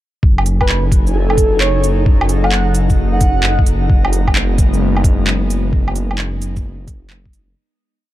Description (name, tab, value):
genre	future garage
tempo	131 BPM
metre	4/4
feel	swing 65% on 16ths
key	F# dorian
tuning	A4 = 436 Hz
part	airy breathy pad	sustained chords	0.2-7.5 s	F#3 to G#5	-23 LUFS	left 1 dB	chorus, sidechain pumping
part	swelling detuned saw bass	bass	0.2-7.5 s	F#1	-16 LUFS	equal	sidechain pumping
part	electronic kick drum	drums	0.2-7.3 s	none	-14 LUFS	equal	none
part	drifting glass-harmonics texture	texture	1.0-7.6 s	D#4 to D#5	-32 LUFS	equal	chorus, built-in reverb
part	organic electronic drum kit	drums	0.4-7.5 s	handclaps, hi-hat, shaker, woodblock	-21 LUFS	right 1 dB	overdrive
part	breathy flute-like synth lead	melody	0.6-3.6 s	A4 to F#5	-21 LUFS	right 1 dB	analog chorus, tape echo
room	digital ambience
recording	dark, warm production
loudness	-12 LUFS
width	side -14 dB against mid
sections	0.2-7.6 chorus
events	fade-out 5.1-7.6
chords	0.2 F#m69; 3.9 G#m/F#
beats	| 0.23 0.69 1.15 1.61 | 2.06 2.52 2.98 3.44 | 3.90 4.35 4.81 5.27 | 5.73 6.19 6.64 7.10